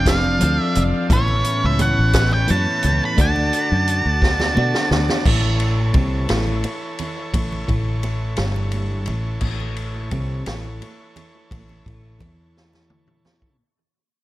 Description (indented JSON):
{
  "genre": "psychedelic rock",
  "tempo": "58 BPM (dotted quarters)",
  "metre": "6/8",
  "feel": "straight",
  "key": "A mixolydian",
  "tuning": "A4 = 443 Hz",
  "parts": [
    { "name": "octave-fuzz lead guitar", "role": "melody", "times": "0.0-4.9 s", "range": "C#5 to B5", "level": "-22 LUFS", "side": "right 1 dB", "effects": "distortion, dub echo" },
    { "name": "overdriven combo organ", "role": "sustained chords", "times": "0.0-13.6 s", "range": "E3 to A5", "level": "-31 LUFS", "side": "right 2 dB", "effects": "none" },
    { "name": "twelve-string electric guitar", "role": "riff", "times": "0.0-13.6 s", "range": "G2 to A4", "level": "-23 LUFS", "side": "left 1 dB", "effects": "rotary speaker" },
    { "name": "fingered electric bass", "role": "bass", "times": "0.0-13.6 s", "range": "F1 to B2", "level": "-22 LUFS", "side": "equal", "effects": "none" },
    { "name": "vintage drum kit", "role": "drums", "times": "0.1-13.6 s", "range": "crash cymbal, hi-hat, kick drum, ride cymbal, snare drum, toms", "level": "-22 LUFS", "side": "equal", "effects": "none" },
    { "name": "congas", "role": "percussion", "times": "0.1-13.4 s", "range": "none", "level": "-33 LUFS", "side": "right 3 dB", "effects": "none" }
  ],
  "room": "light reverb, small room ambience",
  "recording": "echo-heavy mix",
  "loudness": "-17 LUFS",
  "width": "side -16 dB against mid",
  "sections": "0.0-5.3 A section; 5.3-13.6 B section",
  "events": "drum fill 4.2-5.3, 12.6-13.6; fade-out 5.3-13.6",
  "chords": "0.0 F6; 1.1 Aadd9; 3.2 D; 5.3 A",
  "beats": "0.06 | 1.10 2.14 | 3.18 4.22 | 5.26 6.30 | 7.34 8.38 | 9.43 10.47 | 11.51 12.56"
}